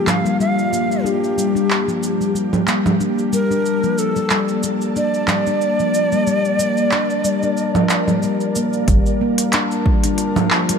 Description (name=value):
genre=organic downtempo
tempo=92 BPM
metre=4/4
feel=swing 55% on 16ths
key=G minor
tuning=A4 = 442 Hz
part: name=breathy hollow Native American-style cedar flute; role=melody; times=0.0-8.2 s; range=G4 to F5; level=-22 LUFS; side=equal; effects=ping-pong delay
part: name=ethereal airy pad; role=sustained chords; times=0.0-10.8 s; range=G3 to A5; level=-23 LUFS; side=left 1 dB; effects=ensemble chorus, built-in reverb, sidechain pumping
part: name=handpan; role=arpeggios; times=0.0-10.8 s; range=F3 to D4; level=-20 LUFS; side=left 3 dB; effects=low-pass filter, ping-pong delay
part: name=bronze singing bowl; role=texture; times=0.0-8.9 s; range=none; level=barely audible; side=none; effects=none
part: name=organic electronic drum kit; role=drums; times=0.1-10.8 s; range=congas, handclaps, hi-hat, shaker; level=-20 LUFS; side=right 3 dB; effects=none
part: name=round analog bass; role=bass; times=8.9-9.0 s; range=G1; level=-17 LUFS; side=right 1 dB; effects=sidechain pumping
part: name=electronic kick drum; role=drums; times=8.9-10.0 s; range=none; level=-17 LUFS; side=right 1 dB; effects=overdrive
room=moderate lush hall reverb, RT60 2.6 s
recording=none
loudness=-16 LUFS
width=side -6 dB against mid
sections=0.0-8.9 A section; 8.9-10.8 B section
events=none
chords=0.0 Gm7; 3.7 Bbmaj7; 8.9 Gm7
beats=0.40 | 1.05 1.70 2.35 3.01 | 3.66 4.31 4.96 5.62 | 6.27 6.92 7.57 8.22 | 8.88 9.53 10.18